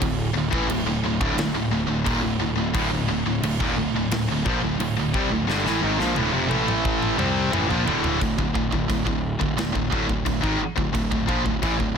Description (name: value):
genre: heavy metal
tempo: 88 BPM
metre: 4/4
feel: straight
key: D minor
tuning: A4 = 442 Hz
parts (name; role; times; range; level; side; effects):
- heavy high-gain guitar; riff; 0.0-12.0 s; D2 to C4; -26 LUFS; left 12 dB; distortion
- heavy high-gain guitar; riff; 0.0-12.0 s; D2 to C4; -26 LUFS; right 11 dB; distortion
- fuzz picked electric bass; bass; 0.0-12.0 s; D1 to C2; -29 LUFS; equal; overdrive
- big rock drum kit; drums; 0.0-12.0 s; china cymbal, crash cymbal, kick drum, snare drum, toms; -28 LUFS; equal; none
- distorted electric guitar; riff; 2.7-8.2 s; D2 to C4; -27 LUFS; equal; overdrive
room: small room ambience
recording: dense, heavily limited modern master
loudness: -21 LUFS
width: side -6 dB against mid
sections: 0.0-8.2 A section; 8.2-12.0 B section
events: drum fill 5.5-8.2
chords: 0.0 Dm; 6.5 A5; 7.2 Dm; 8.2 D5